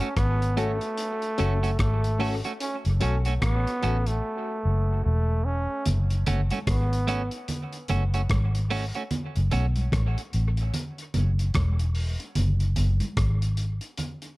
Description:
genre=dub reggae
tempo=74 BPM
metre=4/4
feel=swing 60% on 16ths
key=F# minor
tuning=A4 = 440 Hz
part: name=brilliant trombone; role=melody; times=0.0-7.3 s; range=A3 to C#4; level=-31 LUFS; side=right 1 dB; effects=dub echo
part: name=clean electric guitar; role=accompaniment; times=0.0-9.7 s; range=A3 to F#4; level=-33 LUFS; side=right 4 dB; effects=dub echo
part: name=cloth-damped thuddy drum kit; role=drums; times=0.0-14.4 s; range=hi-hat, kick drum, rim click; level=-31 LUFS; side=equal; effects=none
part: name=vintage muted fingered electric bass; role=bass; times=0.2-13.8 s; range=E1 to B1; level=-24 LUFS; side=equal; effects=none
part: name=reed electric piano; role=stabs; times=0.6-4.0 s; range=C#4 to A4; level=-37 LUFS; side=left 4 dB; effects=fast tremolo, dub echo
part: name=congas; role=percussion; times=5.9-14.2 s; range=none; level=-33 LUFS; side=right 2 dB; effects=none
room=light reverb, small room ambience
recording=dark, warm production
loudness=-23 LUFS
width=side -20 dB against mid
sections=0.0-5.9 A section; 5.9-14.4 A section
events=break 0.0-5.9; drums muted 4.2-5.9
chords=0.0 F#m; 12.4 F#sus2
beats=0.17 0.98 1.79 | 2.61 3.42 4.23 5.04 | 5.86 6.67 7.48 8.30 | 9.11 9.92 10.73 11.55 | 12.36 13.17 13.99

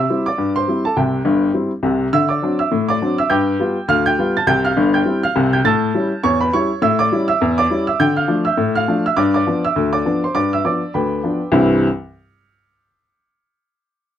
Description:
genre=ragtime piano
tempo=102 BPM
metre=2/4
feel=swing 58% on 16ths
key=C major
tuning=A4 = 440 Hz
part: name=clear upright piano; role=solo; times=0.0-11.9 s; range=G1 to A6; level=-15 LUFS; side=equal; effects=none
room=light reverb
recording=dry, close 1970s-style studio recording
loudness=-15 LUFS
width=side -10 dB against mid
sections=0.0-11.5 A section; 11.5-12.7 B section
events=none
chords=0.0 C; 2.1 D7; 3.3 G7; 4.5 C; 5.6 A7; 8.0 Dm; 9.2 G7; 11.5 C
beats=0.37 | 0.96 1.54 | 2.13 2.72 | 3.30 3.89 | 4.48 5.06 | 5.65 6.24 | 6.82 7.41 | 8.00 8.59 | 9.17 9.76 | 10.35 10.94 | 11.53

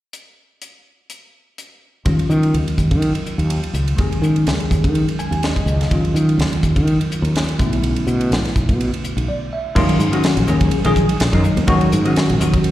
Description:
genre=electric jazz fusion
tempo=125 BPM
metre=4/4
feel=swing 54% on 16ths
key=Eb minor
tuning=A4 = 440 Hz
part: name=crisp fusion drum kit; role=drums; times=0.1-12.7 s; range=crash cymbal, hi-hat, kick drum, ride cymbal, snare drum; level=-22 LUFS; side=equal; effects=none
part: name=bell-like tine electric piano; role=accompaniment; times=2.1-12.7 s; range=D3 to Ab5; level=-19 LUFS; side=equal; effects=lush chorus
part: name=fretless electric bass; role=bass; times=2.1-12.6 s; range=Bb1 to Eb3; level=-18 LUFS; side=equal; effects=none
room=light reverb, small room reverb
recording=live gig heard through the venue's PA, recital hall reverb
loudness=-15 LUFS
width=side -14 dB against mid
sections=0.1-2.1 A section; 2.1-9.8 B section; 9.8-12.7 C section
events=tine electric piano fill 4.9-5.9, 9.0-9.8; break 9.3-9.8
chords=0.1 N.C.; 2.1 Ebm11; 7.6 Bm11; 9.8 Ebm11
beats=| 0.13 0.61 1.10 1.58 | 2.06 2.54 3.02 3.50 | 3.98 4.47 4.95 5.43 | 5.91 6.39 6.87 7.36 | 7.84 8.32 8.80 9.28 | 9.76 10.24 10.72 11.21 | 11.69 12.17 12.65

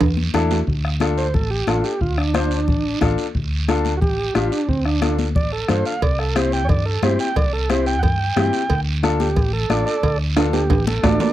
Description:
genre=latin, cumbia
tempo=180 BPM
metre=4/4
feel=straight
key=D minor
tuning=A4 = 442 Hz
part: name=hollow-body short-scale fingered electric bass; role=bass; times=0.0-11.2 s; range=A1 to G2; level=-22 LUFS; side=equal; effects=none
part: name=bombo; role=percussion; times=0.0-11.2 s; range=none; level=-23 LUFS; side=left 1 dB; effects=none
part: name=congas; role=percussion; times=0.0-11.3 s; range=none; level=-27 LUFS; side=left 4 dB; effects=none
part: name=cowbell and timbales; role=percussion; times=0.0-0.6, 6.0-11.3 s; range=none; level=-24 LUFS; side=right 7 dB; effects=none
part: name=guiro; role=percussion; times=0.0-11.3 s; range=none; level=-33 LUFS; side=right 7 dB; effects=none
part: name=clear upright piano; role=accompaniment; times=0.3-11.3 s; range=C4 to C5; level=-22 LUFS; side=left 4 dB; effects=none
part: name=combo organ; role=melody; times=1.2-11.3 s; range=A3 to G5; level=-23 LUFS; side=right 3 dB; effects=none
room=little or no reverb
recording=dry, close 1970s-style studio recording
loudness=-17 LUFS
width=side -13 dB against mid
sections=0.7-11.3 A section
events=drum fill 0.0-0.7, 10.4-11.3; transistor combo organ solo 0.7-11.3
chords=0.0 Asus4; 0.7 Dm; 6.0 C; 8.7 Dm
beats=0.01 0.34 | 0.68 1.01 1.34 1.68 | 2.01 2.35 2.68 3.02 | 3.35 3.68 4.02 4.35 | 4.68 5.02 5.35 5.69 | 6.02 6.36 6.69 7.03 | 7.36 7.70 8.03 8.36 | 8.70 9.03 9.37 9.70 | 10.03 10.37 10.70 11.04

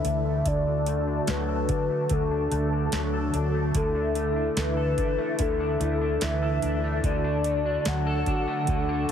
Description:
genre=dream pop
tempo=73 BPM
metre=4/4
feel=straight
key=D major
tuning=A4 = 440 Hz
part: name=hollow clarinet-like synth lead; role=melody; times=0.0-9.1 s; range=A4 to F#5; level=-29 LUFS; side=left 3 dB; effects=chorus, phaser, low-pass filter, ping-pong delay
part: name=hollow soft pad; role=sustained chords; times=0.0-9.1 s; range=D3 to A5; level=-29 LUFS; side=equal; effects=ensemble chorus, low-pass filter
part: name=electric guitar at the edge of break-up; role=arpeggios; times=0.0-9.1 s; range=D3 to A4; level=-32 LUFS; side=equal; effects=analog chorus, low-pass filter, ping-pong delay
part: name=vintage muted fingered electric bass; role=bass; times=0.0-9.1 s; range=D2 to D3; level=-30 LUFS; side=equal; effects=none
part: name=booming analog drum machine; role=drums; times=0.0-9.1 s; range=hi-hat, kick drum, snare drum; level=-30 LUFS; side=equal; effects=overdrive
room=light reverb, digital ambience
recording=heavily compressed radio sound, multiband compression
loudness=-23 LUFS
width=side -8 dB against mid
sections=0.0-9.1 A section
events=filter sweep 0.0-9.1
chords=0.5 D; 3.7 Asus4/D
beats=| 0.46 1.28 2.10 2.92 | 3.75 4.57 5.39 6.21 | 7.03 7.86 8.68

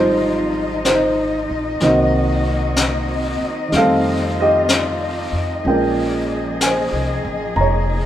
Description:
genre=jazz ballad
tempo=63 BPM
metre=4/4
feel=swing 67% on 8ths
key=unclear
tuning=A4 = 440 Hz
part: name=warm upright piano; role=accompaniment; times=0.0-8.1 s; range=Eb3 to Bb5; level=-18 LUFS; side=right 1 dB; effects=none
part: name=warm chamber cello section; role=sustained chords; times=0.0-8.1 s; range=F3 to Eb5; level=-24 LUFS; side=left 2 dB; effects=none
part: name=upright bass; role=bass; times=0.0-8.1 s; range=F1 to F2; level=-24 LUFS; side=equal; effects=none
part: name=jazz brush drum kit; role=drums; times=0.8-8.1 s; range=brushed snare drum, hi-hat, snare drum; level=-23 LUFS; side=left 2 dB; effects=none
room=wet stone room reverb, RT60 1.3 s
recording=band playing live in one room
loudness=-16 LUFS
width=side -11 dB against mid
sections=0.0-8.1 A section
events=none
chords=0.0 Dbmaj9 (rootless); 1.8 Cm7b5; 3.7 F7; 5.6 Bbm9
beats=0.85 | 1.81 2.77 3.72 4.68 | 5.64 6.60 7.55

